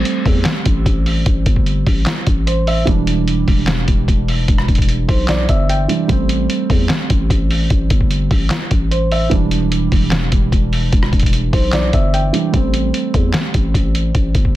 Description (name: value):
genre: hip hop, trap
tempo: 149 BPM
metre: 4/4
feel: half-time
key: A minor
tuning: A4 = 439 Hz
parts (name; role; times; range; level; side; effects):
- felt-muted upright piano; accompaniment; 0.0-14.6 s; E3 to G5; -20 LUFS; right 4 dB; low-pass filter
- growling 808-style bass; bass; 0.0-14.6 s; E1 to E2; -17 LUFS; equal; none
- lo-fi sampler-style drum kit; drums; 0.1-14.5 s; handclaps, hi-hat, kick drum, rim click, snare drum; -16 LUFS; equal; none
room: little or no reverb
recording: dense, heavily limited modern master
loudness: -13 LUFS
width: side -15 dB against mid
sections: 0.0-12.5 A section; 12.5-14.6 B section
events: filter sweep on felt piano 12.5-14.6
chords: 0.0 Am7; 2.9 Em7; 6.1 Am7; 9.3 Em7; 12.5 Am7